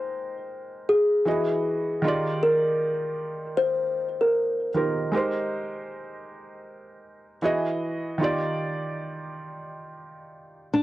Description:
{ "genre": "hip hop", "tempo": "78 BPM", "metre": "4/4", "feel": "swing 64% on 16ths", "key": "Eb major", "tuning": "A4 = 440 Hz", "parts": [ { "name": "felt-muted upright piano", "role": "accompaniment", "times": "0.0-10.8 s", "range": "Eb3 to G5", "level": "-28 LUFS", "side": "right 2 dB", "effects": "none" }, { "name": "kalimba", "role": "melody", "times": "0.9-5.1 s", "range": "Ab4 to C5", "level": "-24 LUFS", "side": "left 1 dB", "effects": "cassette tape, tape echo" }, { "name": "nylon-string guitar", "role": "second line", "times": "10.7-10.8 s", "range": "D4", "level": "-18 LUFS", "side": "left 1 dB", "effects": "none" } ], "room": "moderate booth ambience, RT60 0.2 s", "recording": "home recording on cassette", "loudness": "-23 LUFS", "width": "side -16 dB against mid", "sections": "0.0-10.8 A section", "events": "none", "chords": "0.0 Abmaj7; 1.3 Emaj9; 2.0 Ebmaj9; 5.1 Abmaj7; 7.4 Emaj9; 8.2 Ebmaj9" }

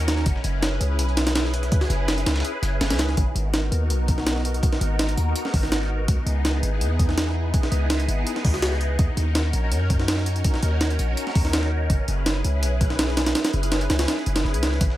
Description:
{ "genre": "drum and bass, jungle", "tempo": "165 BPM", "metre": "4/4", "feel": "straight", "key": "G# minor", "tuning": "A4 = 439 Hz", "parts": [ { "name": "soft string machine", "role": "sustained chords", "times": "0.0-15.0 s", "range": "B3 to B4", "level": "-29 LUFS", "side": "equal", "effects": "phaser, ensemble chorus, vintage 12-bit sampler grit" }, { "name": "warm 808-style bass", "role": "bass", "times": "0.0-14.9 s", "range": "F#1 to F#2", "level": "-23 LUFS", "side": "equal", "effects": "none" }, { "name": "breakbeat sampler-style drum kit", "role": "drums", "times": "0.1-14.9 s", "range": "hi-hat, kick drum, snare drum", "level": "-23 LUFS", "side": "equal", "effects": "studio reverb" }, { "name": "dusty soul sampler-style drum kit", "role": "drums", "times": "0.1-3.2, 14.8-15.0 s", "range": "hi-hat, snare drum", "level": "-35 LUFS", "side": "left 1 dB", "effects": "overdrive, high-pass filter on snare, studio reverb, high-pass filter on hats" } ], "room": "little or no reverb", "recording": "none", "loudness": "-20 LUFS", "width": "side -14 dB against mid", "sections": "0.0-3.2 A section; 3.2-15.0 A section", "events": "drop 0.0-3.2, 3.2-15.0", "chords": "0.3 F#9sus4; 3.2 G#m7; 6.1 C#m9; 9.0 D#m7; 11.9 F#9sus4" }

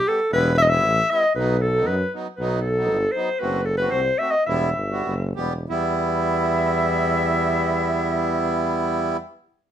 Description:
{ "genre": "klezmer", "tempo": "88-117 BPM", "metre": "2/4", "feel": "straight", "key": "E harmonic minor", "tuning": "A4 = 442 Hz", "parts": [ { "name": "warm clarinet", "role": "melody", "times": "0.0-9.2 s", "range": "A4 to E5", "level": "-22 LUFS", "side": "left 1 dB", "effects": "none" }, { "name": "accordion", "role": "accompaniment", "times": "0.1-9.2 s", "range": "F#3 to G4", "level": "-24 LUFS", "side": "right 1 dB", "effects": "none" }, { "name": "warm tuba", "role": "bass", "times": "0.3-9.2 s", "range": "E1 to F#2", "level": "-25 LUFS", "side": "equal", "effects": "none" } ], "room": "moderate studio reverb, RT60 0.6 s", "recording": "minimal, uncompressed stereo recording", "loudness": "-19 LUFS", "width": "side -10 dB against mid", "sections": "0.0-5.7 A section; 5.7-8.4 B section", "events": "slowing down 3.4-5.7", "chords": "0.0 Em; 1.4 B; 3.4 F#dim; 4.5 Em" }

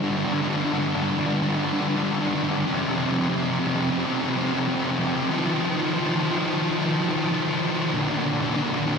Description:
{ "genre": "rock", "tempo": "45 BPM (dotted quarters)", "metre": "6/8", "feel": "straight", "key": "G minor", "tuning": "A4 = 440 Hz", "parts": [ { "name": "sludgy distorted guitar", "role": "solo", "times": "0.0-9.0 s", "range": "F2 to F3", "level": "-22 LUFS", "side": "equal", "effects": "overdrive, tape echo" } ], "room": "wet lush hall reverb, RT60 2.8 s", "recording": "dreamy mix soaked in reverb", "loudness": "-22 LUFS", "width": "side -5 dB against mid", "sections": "0.0-9.0 A section", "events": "build-up 0.0-9.0", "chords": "0.0 G5; 2.7 F5; 5.3 Ebsus2; 7.9 Bb" }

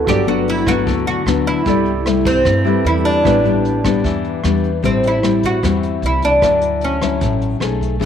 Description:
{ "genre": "bossa nova", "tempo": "151 BPM", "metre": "4/4", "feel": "straight", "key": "unclear", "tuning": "A4 = 439 Hz", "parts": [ { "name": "clear concert grand piano", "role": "accompaniment", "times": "0.0-4.9 s", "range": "E4 to D5", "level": "-24 LUFS", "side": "right 14 dB", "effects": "none" }, { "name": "nylon-string guitar", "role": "accompaniment", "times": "0.0-8.1 s", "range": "G2 to C#5", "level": "-18 LUFS", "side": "left 8 dB", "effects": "none" }, { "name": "upright bass", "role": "bass", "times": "0.0-8.1 s", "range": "G1 to G2", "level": "-22 LUFS", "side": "right 2 dB", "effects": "none" }, { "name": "oud", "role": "melody", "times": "0.1-7.8 s", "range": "C4 to G4", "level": "-17 LUFS", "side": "right 1 dB", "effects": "none" }, { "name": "vintage brush drum kit", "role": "drums", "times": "0.1-8.1 s", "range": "hi-hat, kick drum, rim click", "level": "-25 LUFS", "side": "right 2 dB", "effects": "none" } ], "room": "moderate spring reverb, RT60 1.9 s", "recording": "1960s-style stereo with parts hard left and right", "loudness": "-14 LUFS", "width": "side -8 dB against mid", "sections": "0.0-4.8 A section; 4.8-8.1 B section", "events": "none", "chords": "0.1 Gmaj7; 1.7 C6; 3.2 A9sus4; 4.8 Am7; 6.4 Dmaj9; 7.6 B13" }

